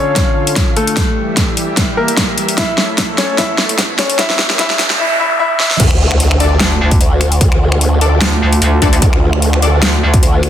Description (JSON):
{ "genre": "heavy wobble dubstep", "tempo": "149 BPM", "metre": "4/4", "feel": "swing 54% on 16ths, half-time", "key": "D harmonic minor", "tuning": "A4 = 440 Hz", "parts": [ { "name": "bright concert grand piano", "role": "melody", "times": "0.0-5.8 s", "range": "A3 to E5", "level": "-17 LUFS", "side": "left 2 dB", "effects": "ping-pong delay" }, { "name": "supersaw pad", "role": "sustained chords", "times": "0.0-10.5 s", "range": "D3 to F5", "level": "-22 LUFS", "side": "right 1 dB", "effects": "sidechain pumping, low-pass filter" }, { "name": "riser, noise sweep and sub drop", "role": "sound effects", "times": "1.7-7.4 s", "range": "none", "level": "-22 LUFS", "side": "equal", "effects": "none" }, { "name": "dubstep drum kit", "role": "drums", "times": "0.2-10.5 s", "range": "crash cymbal, finger snaps, hi-hat, snare drum", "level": "-16 LUFS", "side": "equal", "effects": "none" }, { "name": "electronic kick drum", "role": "drums", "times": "0.2-10.2 s", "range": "none", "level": "-14 LUFS", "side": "equal", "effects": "none" }, { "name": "formant-sweep wobble bass", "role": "bass", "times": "5.8-10.5 s", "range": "D2", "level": "-12 LUFS", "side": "equal", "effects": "chorus, overdrive" }, { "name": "orchestra-hit-like synth stab", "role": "stabs", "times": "6.4-9.8 s", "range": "D4 to D5", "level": "-21 LUFS", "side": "left 4 dB", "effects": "built-in reverb, ping-pong delay" }, { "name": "metallic wobble bass", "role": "bass", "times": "6.6-10.2 s", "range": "D2", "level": "-12 LUFS", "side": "equal", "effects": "chorus, overdrive" } ], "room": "light reverb", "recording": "dense, heavily limited modern master, high-pass filter", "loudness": "-10 LUFS", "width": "side -10 dB against mid", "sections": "0.0-5.8 A section; 5.8-10.5 B section", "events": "build-up 0.0-5.8; drum fill 0.0-5.0, 5.6; filter sweep on supersaw synth 0.0-5.8; filter sweep 0.0-5.8; noise sweep 4.3-5.8; drop 5.8-10.5; impact 5.8-7.4", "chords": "0.0 Dm; 1.0 Edim; 2.6 A; 4.2 Edim; 5.8 Dm", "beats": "0.16 0.56 | 0.97 1.37 1.77 2.17 | 2.58 2.98 3.38 3.79 | 4.19 4.59 4.99 5.40 | 5.80 6.20 6.60 7.01 | 7.41 7.81 8.21 8.62 | 9.02 9.42 9.82 10.23" }